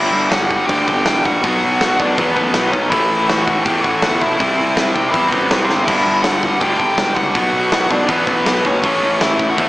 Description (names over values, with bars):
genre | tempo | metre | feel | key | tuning
punk rock | 162 BPM | 4/4 | straight | unclear | A4 = 440 Hz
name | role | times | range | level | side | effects
nasal lead guitar with a parked wah | melody | 0.0-9.7 s | B3 to G5 | -18 LUFS | left 1 dB | overdrive, slapback echo
distorted electric guitar | riff | 0.0-9.7 s | G2 to C4 | -18 LUFS | equal | distortion, slapback echo
fuzz picked electric bass | bass | 0.0-9.7 s | E1 to E2 | -23 LUFS | equal | overdrive
big rock drum kit | drums | 0.3-9.7 s | crash cymbal, hi-hat, kick drum, snare drum | -20 LUFS | equal | none
room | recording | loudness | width
wet recital hall reverb, RT60 1.4 s | big arena sound, small speaker sound | -13 LUFS | side -18 dB against mid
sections
0.0-9.7 A section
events
drum fill 5.7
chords
0.0 G5; 1.4 Bm; 2.9 A5; 4.4 C; 5.9 G5; 7.4 Bm; 8.8 A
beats
0.32 0.69 1.06 | 1.43 1.80 2.17 2.54 | 2.92 3.29 3.66 4.03 | 4.40 4.77 5.14 5.51 | 5.88 6.25 6.62 6.99 | 7.36 7.73 8.10 8.47 | 8.84 9.21 9.58